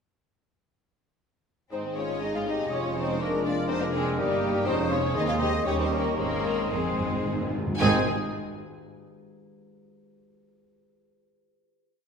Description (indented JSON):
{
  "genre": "quick classical-period movement for symphony orchestra",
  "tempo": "110-124 BPM",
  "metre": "3/4",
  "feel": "rubato",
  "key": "Ab major",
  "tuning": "A4 = 439 Hz",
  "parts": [
    { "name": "rich studio violin section", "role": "melody", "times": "1.7-8.1 s", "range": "G3 to Ab5", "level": "-34 LUFS", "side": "left 4 dB", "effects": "none" },
    { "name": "mellow clarinet", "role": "second line", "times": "1.7-8.0 s", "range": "G4 to Bb4", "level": "-36 LUFS", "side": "left 2 dB", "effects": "none" },
    { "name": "mellow hollow small flute group", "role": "second line", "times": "1.7-8.1 s", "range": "G4 to Ab5", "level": "-34 LUFS", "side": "left 2 dB", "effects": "none" },
    { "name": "rich studio violin section", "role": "second line", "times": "1.7-8.1 s", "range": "G4 to F5", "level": "-36 LUFS", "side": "left 2 dB", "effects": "none" },
    { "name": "warm oboe", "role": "second line", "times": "1.7-8.0 s", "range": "Ab5 to Eb6", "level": "-38 LUFS", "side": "right 1 dB", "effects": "none" },
    { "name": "dark studio viola section", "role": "accompaniment", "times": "1.7-8.1 s", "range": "F3 to G4", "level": "-36 LUFS", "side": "right 2 dB", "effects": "none" },
    { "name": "mellow bassoon", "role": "accompaniment", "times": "1.7-8.0 s", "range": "Eb3 to Ab3", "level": "-35 LUFS", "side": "right 2 dB", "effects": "none" },
    { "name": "mellow French horn section", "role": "sustained chords", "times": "1.7-8.0 s", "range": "G3 to Eb4", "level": "-35 LUFS", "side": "left 4 dB", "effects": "none" },
    { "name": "dark trumpet", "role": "stabs", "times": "1.7-8.0 s", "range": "Bb3 to Ab4", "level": "-34 LUFS", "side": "right 1 dB", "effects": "none" },
    { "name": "dark studio cello section", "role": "bass", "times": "1.7-8.1 s", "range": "Eb2 to Bb2", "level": "-33 LUFS", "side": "right 4 dB", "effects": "none" },
    { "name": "warm studio double bass section", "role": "bass", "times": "1.7-8.1 s", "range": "F1 to Eb2", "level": "-35 LUFS", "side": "right 3 dB", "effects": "none" },
    { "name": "timpani", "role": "percussion", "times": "6.2-8.1 s", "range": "Ab2", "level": "-33 LUFS", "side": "left 1 dB", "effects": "none" }
  ],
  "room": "wet scoring stage reverb, RT60 1.7 s",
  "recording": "minimal, uncompressed stereo recording",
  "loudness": "-24 LUFS",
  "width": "side -6 dB against mid",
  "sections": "1.7-7.8 A section; 7.8-9.4 final chord",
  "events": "slowing down 3.9-7.8; timpani fill 6.2-7.8",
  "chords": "1.7 Ab; 2.7 Db/F; 3.2 Bb7/F; 4.2 Eb/G; 4.7 Db/F; 5.2 Ab/Eb; 5.7 Eb7; 6.2 Ab",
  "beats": "| 1.73 2.23 2.73 | 3.22 3.70 4.19 | 4.67 5.16 5.66 | 6.19 6.72 7.27 | 7.81"
}